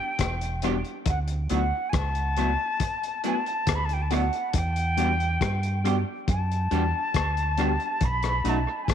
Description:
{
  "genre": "lovers rock reggae",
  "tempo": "69 BPM",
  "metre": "4/4",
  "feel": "straight",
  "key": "E dorian",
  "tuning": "A4 = 438 Hz",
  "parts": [
    { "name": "concert flute", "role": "melody", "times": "0.0-8.9 s", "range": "F#5 to B5", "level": "-28 LUFS", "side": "left 1 dB", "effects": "tape echo" },
    { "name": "deep dub fingered electric bass", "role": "bass", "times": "0.2-8.9 s", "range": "E1 to G2", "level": "-27 LUFS", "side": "right 1 dB", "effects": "none" },
    { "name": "cloth-damped thuddy drum kit", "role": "drums", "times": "0.2-8.9 s", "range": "hi-hat, kick drum, rim click", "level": "-30 LUFS", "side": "left 4 dB", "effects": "tape echo" },
    { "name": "tine electric piano", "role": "accompaniment", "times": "0.6-8.6 s", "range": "G3 to F#4", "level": "-33 LUFS", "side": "left 9 dB", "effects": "none" },
    { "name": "electric guitar through a small old amp", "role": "stabs", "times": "0.6-8.6 s", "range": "E3 to G4", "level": "-33 LUFS", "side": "right 11 dB", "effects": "lush chorus" }
  ],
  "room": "light reverb, small room reverb",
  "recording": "1960s-style stereo with parts hard left and right",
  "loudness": "-23 LUFS",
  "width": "side -9 dB against mid",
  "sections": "0.0-8.9 A section",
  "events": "none",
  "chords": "0.0 Em7; 1.1 D6; 4.5 Em7; 8.0 B7"
}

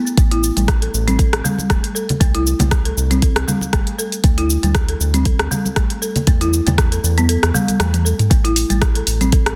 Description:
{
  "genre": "afro house",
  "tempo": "118 BPM",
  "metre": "4/4",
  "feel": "swing 55% on 16ths",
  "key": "unclear",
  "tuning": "A4 = 441 Hz",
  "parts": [
    { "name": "folk marimba with medium hard mallets", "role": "arpeggios", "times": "0.0-9.5 s", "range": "G3 to A4", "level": "-24 LUFS", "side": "equal", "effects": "sidechain pumping, dub echo" },
    { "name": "afro-pop drum kit", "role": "drums", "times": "0.1-9.6 s", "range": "cabasa, hi-hat, rim click, toms", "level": "-23 LUFS", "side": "equal", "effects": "studio reverb" },
    { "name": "round analog bass", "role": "bass", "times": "0.2-9.5 s", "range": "E1 to E2", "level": "-21 LUFS", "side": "equal", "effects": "tube saturation, sidechain pumping" },
    { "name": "electronic kick drum", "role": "drums", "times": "0.2-9.4 s", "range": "none", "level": "-18 LUFS", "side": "equal", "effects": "studio reverb" },
    { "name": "congas", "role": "percussion", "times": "0.6-9.3 s", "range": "none", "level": "-26 LUFS", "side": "equal", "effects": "none" }
  ],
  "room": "light reverb, digital ambience",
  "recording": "dense, heavily limited modern master",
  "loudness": "-17 LUFS",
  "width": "mono",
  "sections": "0.0-9.6 A section",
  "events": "kick drops out 7.3-8.3; drum fill 7.8-8.3",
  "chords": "0.2 N.C.; 4.2 D5; 6.3 N.C."
}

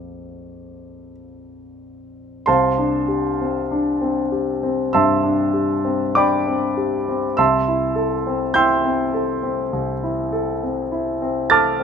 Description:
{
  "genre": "classical, impressionist solo piano",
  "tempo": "42-52 BPM",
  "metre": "4/4",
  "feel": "rubato",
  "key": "C major",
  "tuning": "A4 = 440 Hz",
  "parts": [
    { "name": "clear grand piano", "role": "solo", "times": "0.0-11.8 s", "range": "Bb1 to A6", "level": "-18 LUFS", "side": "equal", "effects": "none" }
  ],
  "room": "light reverb",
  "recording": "minimal, uncompressed stereo recording",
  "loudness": "-17 LUFS",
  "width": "side -7 dB against mid",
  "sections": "0.0-2.5 A section; 2.5-11.8 A section",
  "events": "none",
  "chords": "0.0 Bb; 2.5 Cadd9; 7.4 Am7/C"
}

